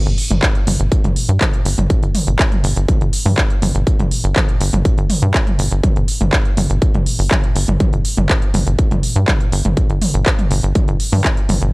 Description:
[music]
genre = melodic techno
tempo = 122 BPM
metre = 4/4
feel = straight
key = unclear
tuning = A4 = 440 Hz
[part]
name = tight sequencer bass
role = bass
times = 0.1-11.7 s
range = G1 to G2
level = -16 LUFS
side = equal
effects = sidechain pumping
[part]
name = techno drum kit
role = drums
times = 0.1-11.7 s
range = handclaps, hi-hat, toms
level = -19 LUFS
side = equal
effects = sidechain pumping on hats, sidechain pumping on toms, sidechain pumping on cymbals
[part]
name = electronic kick drum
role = drums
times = 0.4-11.3 s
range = none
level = -16 LUFS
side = equal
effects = distortion
[sound]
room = little or no reverb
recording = dry, gritty hardware recording, cassette tape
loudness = -13 LUFS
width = side -24 dB against mid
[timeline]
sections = 0.0-11.7 A section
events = none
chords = none

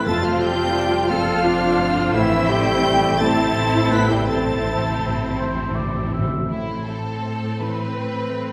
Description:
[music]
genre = cinematic, emotional film score for orchestra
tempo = 52-58 BPM (dotted quarters)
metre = 6/8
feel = rubato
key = A minor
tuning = A4 = 440 Hz
[part]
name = clear studio violin section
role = melody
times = 0.0-8.5 s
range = C6 to B6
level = -33 LUFS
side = equal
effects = none
[part]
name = bright small flute group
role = second line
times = 0.0-5.4 s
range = E5 to B5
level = -27 LUFS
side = equal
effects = none
[part]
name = rich studio violin section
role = second line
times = 0.0-8.5 s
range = E4 to C5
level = -33 LUFS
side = equal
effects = none
[part]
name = warm clarinet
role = second line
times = 0.0-5.4 s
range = E4 to B4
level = -30 LUFS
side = equal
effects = none
[part]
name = clear studio viola section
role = accompaniment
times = 0.0-8.5 s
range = A3 to F4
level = -29 LUFS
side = equal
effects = none
[part]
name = felt-muted upright piano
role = accompaniment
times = 0.0-8.5 s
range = F2 to F4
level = -32 LUFS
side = equal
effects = none
[part]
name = dark French horn section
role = sustained chords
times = 0.0-5.4 s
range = E3 to B3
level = -28 LUFS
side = equal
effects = none
[part]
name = concert harp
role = arpeggios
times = 0.0-8.5 s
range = F2 to F4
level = -34 LUFS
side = equal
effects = none
[part]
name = rich studio cello section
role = bass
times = 0.0-8.5 s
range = A2 to A4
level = -28 LUFS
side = equal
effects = none
[part]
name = warm studio double bass section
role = bass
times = 0.0-6.3 s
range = F1 to A1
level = -30 LUFS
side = equal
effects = none
[part]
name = timpani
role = percussion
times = 2.1-6.5 s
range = A2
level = -32 LUFS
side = equal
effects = none
[part]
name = warm oboe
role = second line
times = 5.4-6.5 s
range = C5 to E5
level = -32 LUFS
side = equal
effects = none
[sound]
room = wet scoring stage reverb, RT60 1.4 s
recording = heard from further back in the room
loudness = -20 LUFS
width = mono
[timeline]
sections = 0.0-6.5 A section; 6.5-8.5 B section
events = timpani fill 2.1-6.5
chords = 0.1 F; 2.1 Am

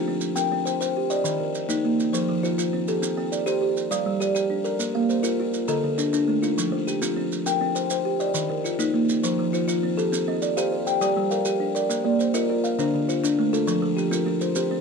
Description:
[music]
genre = southern african traditional, mbira-style interlocking cycle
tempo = 135 BPM (dotted quarters)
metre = 12/8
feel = straight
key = C dorian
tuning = A4 = 440 Hz
[part]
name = buzzing kalimba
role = arpeggios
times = 0.0-14.8 s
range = D3 to G5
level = -24 LUFS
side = left 4 dB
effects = none
[part]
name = kalimba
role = arpeggios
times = 0.0-14.8 s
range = D3 to G5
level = -26 LUFS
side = right 6 dB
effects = none
[part]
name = maracas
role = percussion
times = 0.2-14.7 s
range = none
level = -33 LUFS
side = right 8 dB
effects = none
[sound]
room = light reverb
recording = dark, warm production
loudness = -21 LUFS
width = side -5 dB against mid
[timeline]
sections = 0.0-10.1 A section; 10.1-14.8 B section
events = none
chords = 0.4 Cm; 1.2 Eb5; 2.1 F; 3.0 C5; 3.9 Gm; 4.8 Bb5; 5.7 Dm; 6.6 F5; 7.5 Cm; 8.3 Eb5; 9.2 F; 10.1 Cm; 11.0 Gm; 11.9 Bb; 12.8 Dm; 13.7 F

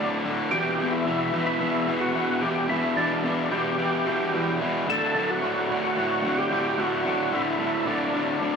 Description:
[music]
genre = rock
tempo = 110 BPM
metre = 4/4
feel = straight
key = D major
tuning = A4 = 442 Hz
[part]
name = overdriven tonewheel organ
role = melody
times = 0.0-8.6 s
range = D4 to A4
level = -26 LUFS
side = equal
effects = chorus vibrato, slow rotary speaker, slapback echo
[part]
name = raw garage guitar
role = riff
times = 0.0-8.6 s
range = D2 to E3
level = -25 LUFS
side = equal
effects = overdrive, slapback echo
[sound]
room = light reverb, digital ambience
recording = live gig heard through the venue's PA, club reverb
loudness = -22 LUFS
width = side -6 dB against mid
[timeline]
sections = 0.0-8.6 A section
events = none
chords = 0.0 D5; 0.5 Em7; 4.9 D

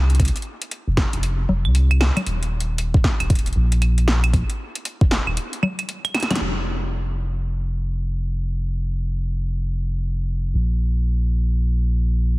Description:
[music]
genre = IDM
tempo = 116 BPM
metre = 4/4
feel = swing 62% on 16ths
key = unclear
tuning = A4 = 442 Hz
[part]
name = round analog bass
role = bass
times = 0.0-12.4 s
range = Eb1 to C2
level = -20 LUFS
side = equal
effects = none
[part]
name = electro analog drum machine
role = drums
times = 0.1-6.6 s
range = claves, congas, hi-hat, snare drum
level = -24 LUFS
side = equal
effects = dub echo
[part]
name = electronic kick drum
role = drums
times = 0.2-5.1 s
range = none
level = -19 LUFS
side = equal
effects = none
[sound]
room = little or no reverb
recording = heavily compressed radio sound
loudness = -19 LUFS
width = side -21 dB against mid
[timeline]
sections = 0.0-6.4 A section; 6.4-12.4 B section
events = break 5.4-6.4; drum fill 6.1; band accent 6.3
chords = none

